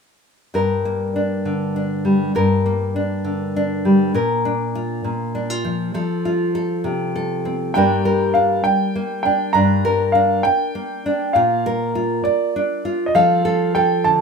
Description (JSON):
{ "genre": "acoustic folk duo or small band", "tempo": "67 BPM (dotted quarters)", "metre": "6/8", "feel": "straight", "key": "G minor", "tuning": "A4 = 440 Hz", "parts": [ { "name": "nylon-string guitar", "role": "accompaniment", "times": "0.5-14.2 s", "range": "G2 to Bb4", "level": "-18 LUFS", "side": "left 1 dB", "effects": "none" }, { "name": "bright upright piano", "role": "melody", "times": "7.7-14.2 s", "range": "D5 to Bb5", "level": "-18 LUFS", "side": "right 2 dB", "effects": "none" } ], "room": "moderate studio reverb, RT60 0.6 s", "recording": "minimal, uncompressed stereo recording", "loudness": "-17 LUFS", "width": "side -5 dB against mid", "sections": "0.5-7.7 A section; 7.7-14.2 B section", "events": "none", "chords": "0.5 Gm; 4.1 Bb; 5.9 F; 7.7 Gm; 11.4 Bb; 13.2 F" }